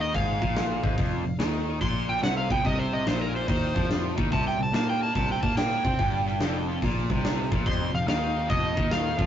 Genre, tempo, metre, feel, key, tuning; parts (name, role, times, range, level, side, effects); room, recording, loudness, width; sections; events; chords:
blues rock power trio and southern rock; 144 BPM; 4/4; swing 66% on 8ths; A4 = 440 Hz
overdriven slide guitar; melody; 0.0-9.3 s; Bb4 to C6; -29 LUFS; right 1 dB
overdriven electric guitar; riff; 0.0-9.3 s; F2 to C4; -31 LUFS; equal
vintage muted picked electric bass; bass; 0.0-9.3 s; F1 to C3; -30 LUFS; equal
big rock drum kit; drums; 0.1-9.3 s; hi-hat, kick drum, snare drum; -28 LUFS; equal
overdriven tonewheel organ; sustained chords; 2.6-9.3 s; D4 to Eb5; -39 LUFS; right 2 dB; slow rotary speaker
light reverb; rough rehearsal-room recording, tube saturation, nothing above 7.6 kHz; -23 LUFS; side -10 dB against mid
0.0-9.3 A section
electric slide guitar solo 0.0-9.3
0.0 F5; 2.6 C7; 6.0 G7; 7.7 F7